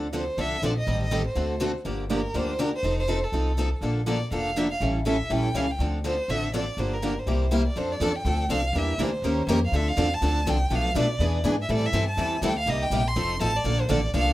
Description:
acoustic string swing (jazz manouche); 244 BPM; 4/4; swing 55% on 8ths; D minor, F major from 7.8 s; A4 = 440 Hz
picked steel-string acoustic guitar; accompaniment; 0.0-14.3 s; B2 to Bb4; -29 LUFS; left 3 dB
picked steel-string acoustic guitar; accompaniment; 0.0-14.3 s; B2 to B4; -31 LUFS; right 4 dB
upright bass; bass; 0.0-14.3 s; F1 to B2; -27 LUFS; equal
warm violin; melody; 0.2-14.3 s; A4 to C6; -29 LUFS; right 1 dB
moderate studio reverb, RT60 0.5 s; rough home demo mix; -23 LUFS; side -15 dB against mid
0.0-7.8 A section; 7.8-14.3 B section
0.0 Dm7; 0.9 Am7b5; 1.4 D7; 1.9 Gm7; 2.8 F7; 3.8 Bbmaj7; 4.8 A7; 5.8 Dm7; 6.8 Gm7; 7.3 C7; 7.8 F6; 8.7 Em7b5; 9.2 Eb13; 9.7 Dm7; 10.7 Bm7b5; 11.2 E7; 11.7 Am7; 12.7 Cm7; 13.2 F7; 13.7 Bbmaj9
0.13 0.38 0.62 | 0.87 1.12 1.36 1.61 | 1.85 2.10 2.35 2.59 | 2.84 3.08 3.33 3.58 | 3.82 4.07 4.32 4.56 | 4.81 5.05 5.30 5.55 | 5.79 6.04 6.29 6.53 | 6.78 7.02 7.27 7.52 | 7.76 8.01 8.25 8.50 | 8.74 8.99 9.23 9.48 | 9.73 9.97 10.22 10.46 | 10.71 10.95 11.20 11.44 | 11.69 11.93 12.18 12.42 | 12.67 12.91 13.16 13.40 | 13.65 13.90 14.14

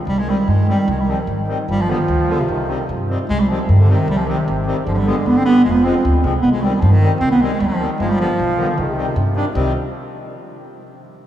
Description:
klezmer; 152 BPM; 2/4; straight; C harmonic minor; A4 = 440 Hz
warm bass clarinet; melody; 0.1-9.7 s; C3 to C4; -18 LUFS; right 1 dB; analog delay
warm trombone; second line; 0.1-9.7 s; C3 to F3; -23 LUFS; right 2 dB
upright bass; bass; 0.1-9.7 s; F1 to G2; -19 LUFS; equal
accordion; accompaniment; 0.3-9.7 s; D3 to D4; -26 LUFS; left 4 dB
wet cathedral reverb, RT60 5.0 s; in a vast, echoing space; -14 LUFS; side -11 dB against mid
0.0-3.3 A section; 3.3-9.5 A section
speeding up 0.0-10.3
0.1 Cm; 1.7 G; 2.5 Cm; 4.9 G; 5.7 Fm; 6.4 Cm; 8.0 G; 8.8 Cm
| 0.07 0.47 | 0.88 1.28 | 1.68 2.08 | 2.48 2.88 | 3.28 3.68 | 4.08 4.47 | 4.87 5.26 | 5.65 6.05 | 6.44 6.83 | 7.22 7.61 | 8.00 8.38 | 8.77 9.16 | 9.55

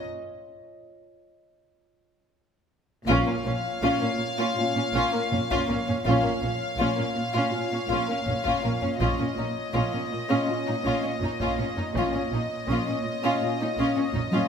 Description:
cinematic, suspense film score; 81 BPM; 4/4; straight; Bb minor; A4 = 442 Hz
warm symphonic violin section; melody; 0.0-14.5 s; Eb5 to F5; -32 LUFS; left 4 dB
glass harmonica; sustained chords; 0.0-14.5 s; F4 to F5; -35 LUFS; right 1 dB
warm symphonic violin section; second line; 3.1-14.5 s; Bb3 to F4; -30 LUFS; left 3 dB
dark symphonic viola section; accompaniment; 3.1-14.5 s; Db4; -30 LUFS; equal
dark French horn section; sustained chords; 3.1-13.7 s; Db4 to F4; -34 LUFS; left 1 dB
warm symphonic cello section; riff; 3.1-14.4 s; Bb2 to Bb3; -34 LUFS; right 2 dB
warm chamber double bass section; bass; 3.1-14.2 s; Bb1; -33 LUFS; right 3 dB
warm symphonic cello section; bass; 3.1-14.4 s; Bb2; -32 LUFS; right 3 dB
taiko ensemble; drums; 3.1-14.5 s; -33 LUFS; equal
wet scoring stage reverb, RT60 1.9 s; -23 LUFS; side -7 dB against mid
0.0-3.1 A section; 3.1-14.5 B section
break 0.0-3.1; drum fill 2.3-3.1, 14.1-14.5
0.0 N.C.; 3.1 Bbm; 9.0 Dbadd9/Bb
| 0.03 0.79 1.56 2.31 | 3.07 3.82 4.57 5.31 | 6.05 6.78 7.51 8.25 | 8.99 9.73 10.47 11.21 | 11.94 12.68 13.41 14.13

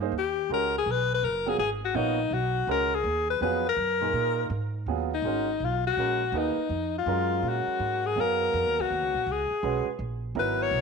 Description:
modal jazz; 164 BPM; 3/4; swing 65% on 8ths; Eb minor from 4.9 s; A4 = 442 Hz
warm baby grand piano; accompaniment; 0.0-10.8 s; Bb2 to F5; -31 LUFS; right 13 dB
upright bass; bass; 0.0-10.8 s; Gb1 to Bb2; -33 LUFS; right 2 dB
breathy alto saxophone; melody; 0.2-10.8 s; Eb4 to Db5; -26 LUFS; left 5 dB
wet echo chamber reverb, RT60 1.3 s, small room ambience; 1960s-style stereo; -25 LUFS; side -5 dB against mid
0.0-4.9 A section; 4.9-10.8 B section
alto saxophone solo 4.9-10.8
0.5 Db13sus4; 4.9 Ebm11; 9.3 Abm11
0.13 | 0.49 0.86 1.23 | 1.59 1.96 2.32 | 2.69 3.06 3.42 | 3.79 4.15 4.52 | 4.88 5.25 5.62 | 5.98 6.35 6.71 | 7.08 7.44 7.81 | 8.18 8.54 8.90 | 9.27 9.63 10.00 | 10.36 10.73

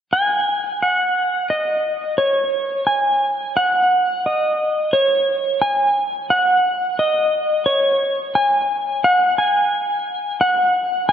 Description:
rock; 87 BPM; 4/4; straight; A4 = 435 Hz
clean lap steel guitar; melody; 0.1-11.1 s; C#5 to G#5; -16 LUFS; equal; tape echo
wet lush hall reverb, RT60 2.7 s; big arena sound; -16 LUFS; side -9 dB against mid
0.8-11.1 A section
0.11 | 0.80 1.48 2.17 2.86 | 3.54 4.23 4.92 5.60 | 6.29 6.98 7.66 8.35 | 9.04 9.72 10.41 11.09

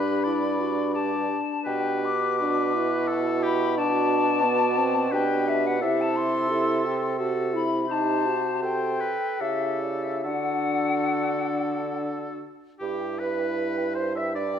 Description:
classical, slow romantic movement for wind quintet; 68-92 BPM; 3/4; rubato; G major from 3.8 s; A4 = 440 Hz
mellow hollow silver concert flute; melody; 0.0-14.6 s; D5 to D6; -27 LUFS; left 5 dB
clear oboe; second line; 0.0-14.6 s; G4 to E5; -33 LUFS; left 3 dB
clear French horn; accompaniment; 0.0-14.6 s; B3 to G4; -29 LUFS; left 1 dB
dark clarinet; accompaniment; 0.0-14.6 s; E4 to E5; -31 LUFS; right 9 dB
warm bassoon; bass; 0.0-14.6 s; G2 to D3; -29 LUFS; right 2 dB
moderate recital hall reverb, RT60 1.6 s; -23 LUFS; side -8 dB against mid
0.0-12.8 A section; 12.8-14.6 B section
0.0 G; 1.7 G/B; 5.8 Am7/C; 7.9 Am7b5/C; 9.4 A7/C#; 10.2 D; 12.8 G
0.26 0.94 | 1.65 2.39 3.10 | 3.78 4.43 5.12 | 5.82 6.50 7.19 | 7.89 8.62 9.40 | 10.24 11.12 11.97 | 12.80 13.58 14.35

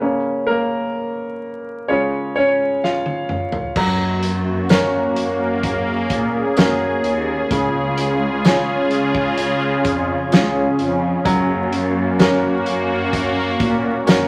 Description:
pop ballad; 64 BPM; 4/4; straight; F# major; A4 = 440 Hz
bright concert grand piano; accompaniment; 0.0-14.3 s; C#3 to E#5; -23 LUFS; equal
loose indie drum kit; drums; 2.8-14.3 s; crash cymbal, hi-hat, kick drum, snare drum, toms; -22 LUFS; equal
sweeping resonant pad; sustained chords; 3.8-14.3 s; C#3 to G#4; -23 LUFS; equal; chorus
rich studio cello section; bass; 3.8-14.3 s; C#2 to A#2; -27 LUFS; equal
tambourine; percussion; 4.7-14.3 s; -38 LUFS; equal
wet studio reverb, RT60 0.8 s; vinyl crackle; -19 LUFS; mono
0.0-3.8 A section; 3.8-14.3 B section
grand piano solo 0.0-3.8; drum fill 2.8-3.8
0.0 A#m/C#; 1.9 C#; 3.8 F#; 7.5 C#; 11.3 F#
| 0.01 0.95 1.88 2.82 | 3.76 4.70 5.63 6.57 | 7.51 8.45 9.38 10.32 | 11.26 12.20 13.13 14.07

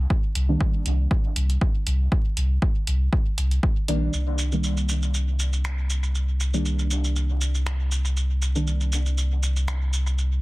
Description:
dub techno; 119 BPM; 4/4; swing 53% on 16ths; C minor; A4 = 441 Hz
deep mellow chord stab; stabs; 0.0-10.4 s; Eb3 to D4; -30 LUFS; right 1 dB; chorus, phaser, sidechain pumping, dub echo
soft dub sub bass; bass; 0.0-10.4 s; Bb1 to C2; -22 LUFS; equal; sidechain pumping
electronic kick drum; drums; 0.1-3.7 s; -22 LUFS; equal
punchy analog drum machine; drums; 0.4-10.3 s; finger snaps, hi-hat, shaker; -32 LUFS; right 1 dB; soft clipping on snare, dub echo
little or no reverb; dense, heavily limited modern master, vinyl crackle; -21 LUFS; side -21 dB against mid
0.0-4.1 A section; 4.1-10.4 B section
filter sweep on synth stab 0.0-4.1, 4.1-10.4
0.0 Cm9
| 0.10 0.61 1.11 1.61 | 2.12 2.62 3.13 3.63 | 4.13 4.64 5.14 5.65 | 6.15 6.66 7.16 7.66 | 8.17 8.67 9.18 9.68 | 10.19

